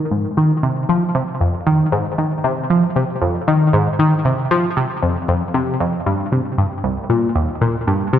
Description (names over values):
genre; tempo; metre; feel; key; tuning
ambient; 116 BPM; 4/4; straight; F minor; A4 = 441 Hz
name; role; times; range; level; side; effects
tight sequenced synth; solo; 0.0-8.2 s; C2 to F3; -15 LUFS; equal; chorus, tape echo
room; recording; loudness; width
wet concert hall reverb, RT60 2.4 s; none; -15 LUFS; side -10 dB against mid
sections
0.0-8.2 A section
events
none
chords
none